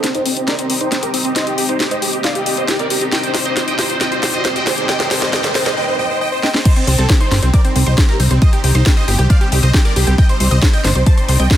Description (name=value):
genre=uplifting trance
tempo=136 BPM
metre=4/4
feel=straight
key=C minor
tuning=A4 = 440 Hz
part: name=supersaw chords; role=melody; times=0.0-11.6 s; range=C4 to A5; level=-19 LUFS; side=right 1 dB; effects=phaser, sidechain pumping, low-pass filter, digital delay
part: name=house drum kit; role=drums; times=0.0-11.6 s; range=crash cymbal, hi-hat, snare drum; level=-19 LUFS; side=left 1 dB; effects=overdrive
part: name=riser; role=sound effects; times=1.1-5.8 s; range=none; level=-27 LUFS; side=equal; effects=none
part: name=lush unison pad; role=sustained chords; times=0.3-11.6 s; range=G3 to Eb5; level=-25 LUFS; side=left 1 dB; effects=chorus, phaser, sidechain pumping
part: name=wide unison pluck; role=second line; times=6.7-11.6 s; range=C5 to A6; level=-26 LUFS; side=right 1 dB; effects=sidechain pumping
part: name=electronic kick drum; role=drums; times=6.7-11.6 s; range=none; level=-12 LUFS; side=equal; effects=overdrive
part: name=plucky analog bass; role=bass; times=6.9-11.5 s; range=G1 to C2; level=-13 LUFS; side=equal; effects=sidechain pumping
room=moderate lush hall reverb, RT60 1.8 s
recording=dense, heavily limited modern master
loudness=-12 LUFS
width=side -12 dB against mid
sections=0.0-6.7 A section; 6.7-11.6 B section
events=build-up 0.0-6.7; drum fill 0.0-5.8, 6.4; filter sweep on supersaw synth 0.0-6.7; riser 1.1-5.8; drop 6.7-11.6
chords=0.0 Cm